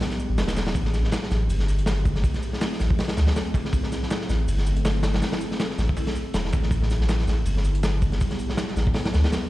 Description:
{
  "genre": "drum and bass, jungle",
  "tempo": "161 BPM",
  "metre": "4/4",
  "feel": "swing 55% on 16ths",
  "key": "A minor",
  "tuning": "A4 = 440 Hz",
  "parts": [
    { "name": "ethereal airy pad", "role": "sustained chords", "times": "0.0-9.5 s", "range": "G3 to A4", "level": "-32 LUFS", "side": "left 1 dB", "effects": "ensemble chorus, built-in reverb, vintage 12-bit sampler grit" },
    { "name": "crunchy breakbeat drum kit", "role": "drums", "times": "0.0-9.4 s", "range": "hi-hat, kick drum, snare drum", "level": "-25 LUFS", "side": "equal", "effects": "none" },
    { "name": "dusty soul sampler-style drum kit", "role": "drums", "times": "0.0-9.4 s", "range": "hi-hat, shaker, snare drum", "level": "-41 LUFS", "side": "right 2 dB", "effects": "high-pass filter on perc, high-pass filter on snare, high-pass filter on hats" },
    { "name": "soft dub sub bass", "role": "bass", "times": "0.3-9.2 s", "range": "E1 to D2", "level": "-23 LUFS", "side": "equal", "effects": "none" }
  ],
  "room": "studio reverb",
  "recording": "played on a big sound system in a bare room, large studio reverb, vinyl crackle",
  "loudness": "-21 LUFS",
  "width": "side -16 dB against mid",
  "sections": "0.0-9.5 A section",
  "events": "none",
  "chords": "0.0 Em; 0.8 Am7; 6.7 Em",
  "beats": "0.01 0.38 | 0.75 1.12 1.50 1.87 | 2.24 2.62 2.99 3.36 | 3.73 4.11 4.48 4.85 | 5.22 5.60 5.97 6.34 | 6.71 7.09 7.46 7.83 | 8.21 8.58 8.95 9.32"
}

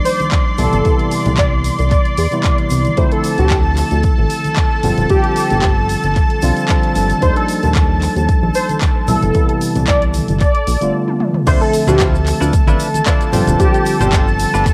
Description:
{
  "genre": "nu-disco, nu disco",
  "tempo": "113 BPM",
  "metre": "4/4",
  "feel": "swing 54% on 16ths",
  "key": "D dorian",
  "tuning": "A4 = 435 Hz",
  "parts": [
    { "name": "tine electric piano", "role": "accompaniment", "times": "0.0-14.7 s", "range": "C3 to E5", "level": "-22 LUFS", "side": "equal", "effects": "sidechain pumping, cassette tape" },
    { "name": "lush unison pad", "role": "sustained chords", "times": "0.0-14.7 s", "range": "A4 to C6", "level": "-24 LUFS", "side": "equal", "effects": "chorus, sidechain pumping, cassette tape" },
    { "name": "unison lead", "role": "melody", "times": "0.1-14.1 s", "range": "G4 to D5", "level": "-22 LUFS", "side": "equal", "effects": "ensemble chorus, cassette tape, analog delay" },
    { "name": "house drum kit", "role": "drums", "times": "0.1-14.7 s", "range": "crash cymbal, handclaps, hi-hat, shaker, toms", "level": "-27 LUFS", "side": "equal", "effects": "overdrive, cassette tape" },
    { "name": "egg shaker and congas", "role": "percussion", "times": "0.1-14.7 s", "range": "none", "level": "-28 LUFS", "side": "equal", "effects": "none" },
    { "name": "electronic kick drum", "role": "drums", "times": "0.3-14.7 s", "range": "none", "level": "-18 LUFS", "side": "equal", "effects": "cassette tape" },
    { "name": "chorused synth bass", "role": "bass", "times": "0.6-14.7 s", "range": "D1 to E2", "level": "-20 LUFS", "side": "equal", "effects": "none" },
    { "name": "direct-recorded clean electric guitar", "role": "riff", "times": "11.5-14.7 s", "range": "D4 to D5", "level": "-26 LUFS", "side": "equal", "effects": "subtle chorus, cassette tape" }
  ],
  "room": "light reverb, digital ambience",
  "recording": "home recording on cassette",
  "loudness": "-15 LUFS",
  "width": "mono",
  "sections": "0.0-11.5 A section; 11.5-14.7 B section",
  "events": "break 10.9-11.5; drum fill 11.1-11.5; drop 11.5-14.7",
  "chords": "0.0 Ebmaj9; 0.6 Cmaj7; 3.0 Dm9; 4.8 G7sus4; 7.2 Ebmaj9; 9.1 Cmaj7; 10.4 G9; 11.5 Dm9; 13.3 G7sus4",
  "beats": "0.32 | 0.85 1.38 1.92 2.45 | 2.98 3.51 4.04 4.57 | 5.10 5.63 6.16 6.69 | 7.22 7.76 8.29 8.82 | 9.35 9.88 10.41 10.94 | 11.47 12.00 12.54 13.07 | 13.60 14.13 14.66"
}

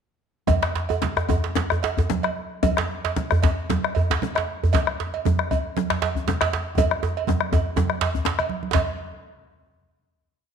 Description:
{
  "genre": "west african traditional, West African drum ensemble",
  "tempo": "111-131 BPM",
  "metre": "4/4",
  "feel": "swing 54% on 16ths",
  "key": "none",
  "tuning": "none",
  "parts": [
    { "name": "bombo", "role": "percussion", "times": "0.5-9.0 s", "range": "none", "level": "-26 LUFS", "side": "left 5 dB", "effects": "none" },
    { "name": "congas", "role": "percussion", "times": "0.5-9.0 s", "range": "none", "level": "-30 LUFS", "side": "right 6 dB", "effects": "none" },
    { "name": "cowbell", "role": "percussion", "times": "0.5-9.0 s", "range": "none", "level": "-30 LUFS", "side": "right 9 dB", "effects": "none" },
    { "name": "djembe", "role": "percussion", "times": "0.5-9.0 s", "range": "none", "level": "-30 LUFS", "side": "left 7 dB", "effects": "none" },
    { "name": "djembe", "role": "percussion", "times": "0.5-9.0 s", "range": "none", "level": "-24 LUFS", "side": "right 2 dB", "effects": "none" }
  ],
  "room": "moderate echo chamber reverb, RT60 1.5 s, studio ambience",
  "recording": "1960s-style stereo with parts hard left and right",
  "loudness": "-21 LUFS",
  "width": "side -7 dB against mid",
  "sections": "0.5-8.7 A section; 8.7-10.5 final hit",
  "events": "speeding up 0.5-10.5; drum fill 6.8-8.7",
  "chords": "none",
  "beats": "| 0.48 1.02 1.56 2.10 | 2.63 3.16 3.69 4.22 | 4.74 5.25 5.77 6.27 | 6.78 7.28 7.77 8.26 | 8.74"
}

